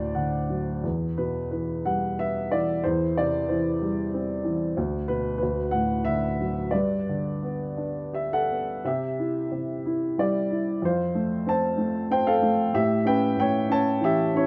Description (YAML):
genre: classical, lyrical solo piano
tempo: 80-96 BPM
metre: 3/4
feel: rubato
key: unclear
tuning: A4 = 440 Hz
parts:
  - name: dark upright piano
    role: solo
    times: 0.0-14.5 s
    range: D2 to A5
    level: -26 LUFS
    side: equal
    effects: none
room: light reverb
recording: dark, warm production, nothing above 7.6 kHz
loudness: -26 LUFS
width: mono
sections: 0.0-8.8 A section; 8.8-14.5 B section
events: none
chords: 0.0 D; 0.8 Em; 2.8 C/E; 4.8 Bm/D; 5.4 D; 6.7 G; 8.8 C; 10.8 F; 12.7 A7